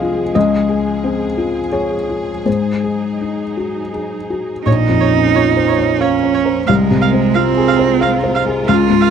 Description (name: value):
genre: neoclassical piano and strings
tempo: 79-92 BPM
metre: 3/4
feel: rubato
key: Bb minor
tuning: A4 = 440 Hz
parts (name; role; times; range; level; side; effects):
- felt-muted upright piano; accompaniment; 0.0-9.1 s; Bb1 to F5; -15 LUFS; left 3 dB; none
- clear studio string section; sustained chords; 0.0-9.1 s; F3 to Bb4; -26 LUFS; right 4 dB; none
- clear cello; second line; 4.7-9.1 s; Ab3 to F4; -15 LUFS; right 13 dB; none
- clear viola; accompaniment; 4.7-9.1 s; Db5 to F5; -19 LUFS; right 9 dB; none
room: little or no reverb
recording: dry, close 1970s-style studio recording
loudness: -13 LUFS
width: side -7 dB against mid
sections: 0.0-4.7 A section; 4.7-9.1 A section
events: none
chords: 0.4 Dbmaj7; 2.5 Ab7; 4.7 Bbmadd9; 6.7 Fm/C